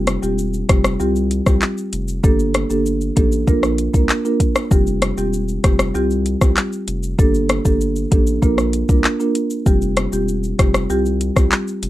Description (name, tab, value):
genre	dancehall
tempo	97 BPM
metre	4/4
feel	straight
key	F major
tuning	A4 = 440 Hz
part	marimba with medium mallets	accompaniment	0.0-11.5 s	G3 to Bb4	-19 LUFS	right 1 dB	none
part	saturated sub bass	bass	0.0-11.9 s	E1 to C2	-22 LUFS	equal	none
part	afro-pop drum kit	drums	0.1-11.9 s	handclaps, hi-hat, kick drum, rim click, shaker	-16 LUFS	equal	none
room	light reverb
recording	rough home demo mix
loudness	-15 LUFS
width	side -15 dB against mid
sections	0.0-11.9 A section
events	none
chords	0.0 Fsus2; 1.0 Csus4; 2.2 Gmadd9; 3.5 Bb; 4.7 Fsus2; 6.0 Csus4; 7.2 Gmadd9; 8.4 Bb; 9.7 Fsus2; 10.9 Csus4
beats	0.38 1.00 1.62 | 2.24 2.86 3.48 4.09 | 4.71 5.33 5.95 6.57 | 7.19 7.81 8.43 9.04 | 9.66 10.28 10.90 11.52